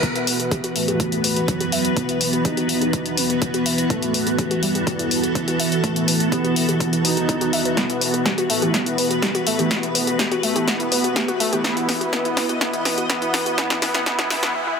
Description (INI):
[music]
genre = melodic techno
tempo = 124 BPM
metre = 4/4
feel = straight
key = unclear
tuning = A4 = 440 Hz
[part]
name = wide unison lead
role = melody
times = 0.0-14.5 s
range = E3 to D#4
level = -25 LUFS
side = equal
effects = vintage 12-bit sampler grit, sidechain pumping, tape echo
[part]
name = evolving wavetable pad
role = sustained chords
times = 0.0-14.5 s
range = E3 to D#5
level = -25 LUFS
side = equal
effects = ensemble chorus, built-in reverb, phaser, sidechain pumping
[part]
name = warbly dusty pluck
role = arpeggios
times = 0.0-14.8 s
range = E4 to E5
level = -28 LUFS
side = left 1 dB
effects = chorus, sidechain pumping, ping-pong delay
[part]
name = deep house drum kit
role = drums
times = 0.0-14.5 s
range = hi-hat, snare drum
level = -23 LUFS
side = left 2 dB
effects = overdrive
[part]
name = electronic kick drum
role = drums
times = 0.0-14.2 s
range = none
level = -27 LUFS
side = equal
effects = overdrive, high-pass filter on kick, high-pass filter on room
[part]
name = airy breathy pad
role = texture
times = 0.0-14.5 s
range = F#4 to B4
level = -32 LUFS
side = equal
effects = none
[part]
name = analog synth brass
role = stabs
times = 0.9-14.5 s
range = E3 to F#4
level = -27 LUFS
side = right 2 dB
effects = chorus, sidechain pumping, ping-pong delay
[sound]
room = moderate huge ambient reverb, RT60 4.0 s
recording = dense, heavily limited modern master, high-pass filter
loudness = -18 LUFS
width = side -6 dB against mid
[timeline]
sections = 0.0-14.8 A section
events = build-up 0.0-14.8; filter sweep on synth arpeggio sound 0.0-14.8; filter sweep on analog synth lead 0.0-14.8; filter sweep on analog polysynth 0.0-14.8; drum fill 7.8-14.5; break 14.5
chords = 0.0 Esus2